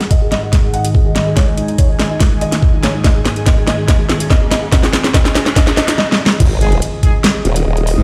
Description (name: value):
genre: heavy wobble dubstep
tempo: 143 BPM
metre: 4/4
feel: half-time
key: unclear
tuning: A4 = 441 Hz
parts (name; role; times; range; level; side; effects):
- dark concert grand piano; melody; 0.0-6.4 s; D#4 to F#5; -24 LUFS; equal; low-pass filter, dub echo
- evolving wavetable pad; sustained chords; 0.1-6.0 s; G#2 to D#5; -24 LUFS; equal; chorus, built-in reverb, phaser, sidechain pumping
- dubstep drum kit; drums; 0.0-8.0 s; crash cymbal, hi-hat, snare drum; -18 LUFS; equal; studio ambience
- riser, noise sweep and impact; sound effects; 2.5-8.0 s; none; -28 LUFS; equal; none
- airy breathy pad; texture; 0.0-8.0 s; G#4 to G#5; -31 LUFS; equal; chorus, sidechain pumping
- electronic kick drum; drums; 0.1-7.1 s; none; -14 LUFS; equal; studio ambience
- formant-sweep wobble bass; bass; 6.4-8.0 s; D#1 to G#1; -15 LUFS; equal; chorus, overdrive
- mellow brass ensemble; stabs; 6.6-7.1 s; G#3 to G#4; -25 LUFS; equal; dub echo
room: light reverb, digital ambience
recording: played on a big sound system in a bare room, stone room reverb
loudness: -13 LUFS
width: mono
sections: 0.0-6.4 A section; 6.4-8.0 B section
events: build-up 0.0-6.4; drum fill 0.0-6.0, 6.0-6.4; drop 6.4-8.0; impact 6.4-8.0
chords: 0.0 G#5